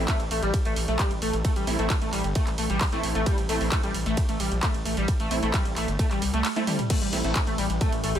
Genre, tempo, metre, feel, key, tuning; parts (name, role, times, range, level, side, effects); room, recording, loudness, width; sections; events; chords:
driving peak-time techno; 132 BPM; 4/4; straight; A minor; A4 = 442 Hz
rave stab; stabs; 0.0-7.5 s; A3 to E4; -32 LUFS; right 2 dB; chorus, built-in reverb, sidechain pumping, digital delay
gritty driven synth bass; bass; 0.0-8.2 s; G1 to C2; -29 LUFS; equal; sidechain pumping
overdriven synth lead; riff; 0.1-8.2 s; G3 to A3; -29 LUFS; equal; distortion, ensemble chorus, sidechain pumping, digital delay
electronic kick drum; drums; 0.1-7.9 s; -26 LUFS; equal; distortion, overdrive
punchy analog drum machine; drums; 0.1-8.2 s; crash cymbal, handclaps, hi-hat, ride cymbal, toms; -31 LUFS; equal
metallic inharmonic drone; drone; 7.5-8.2 s; A2 to E3; -35 LUFS; left 2 dB; chorus, built-in reverb, sidechain pumping
little or no reverb; -23 LUFS; side -10 dB against mid
0.0-6.9 A section; 6.9-8.2 A section
drop 0.0-6.9, 6.9-8.2; drum fill 6.6-6.9
0.0 Am